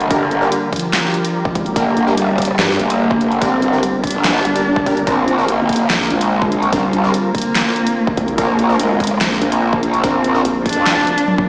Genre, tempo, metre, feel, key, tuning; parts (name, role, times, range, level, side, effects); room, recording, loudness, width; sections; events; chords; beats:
heavy wobble dubstep; 145 BPM; 4/4; half-time; A4 = 438 Hz
dark cello; melody; 0.0-11.5 s; D3 to D4; -21 LUFS; equal; tape echo
supersaw chords; sustained chords; 0.0-11.5 s; D3 to Bb4; -26 LUFS; equal; sidechain pumping, low-pass filter
growl bass; bass; 0.0-11.0 s; F1 to F2; -20 LUFS; equal; chorus, overdrive
dubstep drum kit; drums; 0.0-11.5 s; handclaps, hi-hat, snare drum, toms; -23 LUFS; equal; overdrive
supersaw stab; stabs; 0.1-10.4 s; C4 to Bb4; -25 LUFS; equal; cassette tape
electronic kick drum; drums; 0.1-11.5 s; -25 LUFS; equal; overdrive
vowel-sweep wobble bass; bass; 1.6-11.5 s; F1 to G2; -24 LUFS; equal; chorus, overdrive
moderate lush hall reverb, RT60 2.0 s; played on a big sound system in a bare room, stone room reverb, small speaker sound; -16 LUFS; mono
0.0-11.5 A section
drum fill 11.3
0.0 Gm; 5.1 Bbadd9
| 0.10 0.52 0.93 1.35 | 1.76 2.17 2.59 3.00 | 3.42 3.83 4.24 4.66 | 5.07 5.49 5.90 6.31 | 6.73 7.14 7.55 7.97 | 8.38 8.79 9.21 9.62 | 10.04 10.45 10.86 11.28